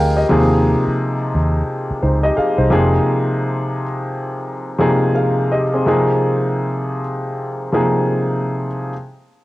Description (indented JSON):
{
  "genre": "R&B",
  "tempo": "74-87 BPM",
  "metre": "4/4",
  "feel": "swing 61% on 16ths",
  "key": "F minor",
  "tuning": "A4 = 441 Hz",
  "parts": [
    { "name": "warm baby grand piano", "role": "accompaniment", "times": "0.0-8.9 s", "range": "C3 to G5", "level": "-16 LUFS", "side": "equal", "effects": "cassette tape" },
    { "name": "vintage muted fingered electric bass", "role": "bass", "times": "0.0-3.0 s", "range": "F1 to Eb2", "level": "-17 LUFS", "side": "equal", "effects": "tube saturation" }
  ],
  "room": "moderate small room reverb, RT60 0.5 s",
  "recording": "home recording on cassette",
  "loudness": "-15 LUFS",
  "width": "side -17 dB against mid",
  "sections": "0.0-8.9 A section",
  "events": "slowing down 3.0-8.9",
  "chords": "0.3 Eb13sus4; 2.7 Fm7"
}